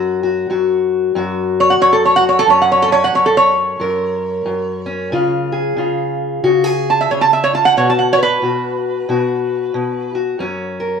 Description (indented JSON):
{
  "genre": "acoustic country blues, solo or duo",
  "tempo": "91 BPM",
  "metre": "4/4",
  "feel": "swing 61% on 8ths",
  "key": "F# major",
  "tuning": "A4 = 440 Hz",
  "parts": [
    { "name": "lap resonator guitar", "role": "melody", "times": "0.0-10.2 s", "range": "A4 to A5", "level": "-12 LUFS", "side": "right 2 dB", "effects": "none" },
    { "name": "fingerpicked steel-string acoustic guitar", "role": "accompaniment", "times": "0.0-11.0 s", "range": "F#2 to B4", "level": "-17 LUFS", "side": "left 4 dB", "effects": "none" }
  ],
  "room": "wet stone room reverb, RT60 1.0 s",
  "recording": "band playing live in one room",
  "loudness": "-13 LUFS",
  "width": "side -6 dB against mid",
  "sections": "0.0-11.0 A section",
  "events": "resonator guitar played with a steel bar solo 0.0-11.0",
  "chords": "0.0 F#; 5.1 C#; 7.8 B5; 10.4 F#"
}